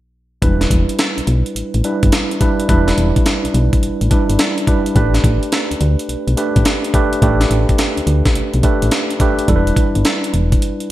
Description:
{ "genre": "R&B, new jack swing", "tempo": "106 BPM", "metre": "4/4", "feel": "swing 66% on 16ths", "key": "E minor", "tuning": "A4 = 440 Hz", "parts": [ { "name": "tine electric piano", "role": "accompaniment", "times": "0.4-10.9 s", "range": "G3 to B4", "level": "-18 LUFS", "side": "right 1 dB", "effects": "medium stereo tremolo" }, { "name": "solid FM bass", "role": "bass", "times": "0.4-10.6 s", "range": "E1 to D2", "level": "-16 LUFS", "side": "equal", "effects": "none" }, { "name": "breakbeat sampler-style drum kit", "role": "drums", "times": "0.4-10.9 s", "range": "hi-hat, kick drum, snare drum", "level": "-16 LUFS", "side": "equal", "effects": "gated reverb" } ], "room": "moderate plate reverb, RT60 1.3 s", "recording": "bright 1980s-style digital production", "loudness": "-13 LUFS", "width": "side -15 dB against mid", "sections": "0.4-9.5 A section; 9.5-10.9 B section", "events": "none", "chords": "0.4 Em7; 5.0 A9sus4; 9.5 Em7" }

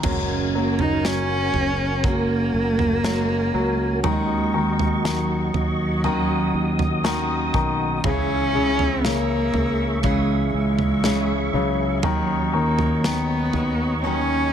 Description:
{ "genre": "pop ballad", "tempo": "60 BPM", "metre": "4/4", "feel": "straight", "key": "unclear", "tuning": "A4 = 440 Hz", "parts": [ { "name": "clear concert grand piano", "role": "accompaniment", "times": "0.0-14.5 s", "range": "C#3 to F#3", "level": "-26 LUFS", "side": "left 6 dB", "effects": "none" }, { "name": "tonewheel organ", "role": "sustained chords", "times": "0.0-14.5 s", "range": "F#4 to D#6", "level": "-29 LUFS", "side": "right 1 dB", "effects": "chorus vibrato, slow rotary speaker" }, { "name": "picked steel-string acoustic guitar", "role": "arpeggios", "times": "0.0-14.5 s", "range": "F#2 to G#4", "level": "-30 LUFS", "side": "right 11 dB", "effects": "none" }, { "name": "fingered electric bass", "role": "bass", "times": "0.0-14.5 s", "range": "F#1 to D#2", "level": "-27 LUFS", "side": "equal", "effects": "none" }, { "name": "modern studio drum kit", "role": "drums", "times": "0.0-13.8 s", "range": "crash cymbal, kick drum, snare drum, toms", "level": "-26 LUFS", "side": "right 2 dB", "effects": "none" }, { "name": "dark cello", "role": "melody", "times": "0.6-14.5 s", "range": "F#3 to D#4", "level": "-23 LUFS", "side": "equal", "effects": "none" } ], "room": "light reverb, small room ambience", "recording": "none", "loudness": "-19 LUFS", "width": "side -8 dB against mid", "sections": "0.0-14.5 A section", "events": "none", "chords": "0.0 F#add9; 4.0 D#m7; 8.0 C#m; 12.0 Badd9/D#" }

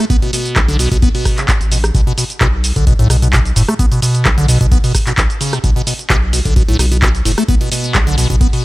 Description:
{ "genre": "acid house", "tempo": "130 BPM", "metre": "4/4", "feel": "swing 53% on 16ths", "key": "B minor", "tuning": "A4 = 440 Hz", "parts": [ { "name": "liquid acid bass", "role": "riff", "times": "0.0-8.6 s", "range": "A2 to B3", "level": "-16 LUFS", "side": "equal", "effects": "phaser, tube saturation, digital delay" }, { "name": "punchy analog drum machine", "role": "drums", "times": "0.0-8.6 s", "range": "handclaps, hi-hat, rim click, shaker", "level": "-18 LUFS", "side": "equal", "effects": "none" }, { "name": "round analog bass", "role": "bass", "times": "0.1-8.5 s", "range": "F#1 to B1", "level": "-16 LUFS", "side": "equal", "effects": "sidechain pumping" }, { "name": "electronic kick drum", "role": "drums", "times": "0.1-8.5 s", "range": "none", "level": "-14 LUFS", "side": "equal", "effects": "none" } ], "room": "digital ambience", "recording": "none", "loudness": "-11 LUFS", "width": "side -18 dB against mid", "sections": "0.0-8.6 A section", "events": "none", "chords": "none" }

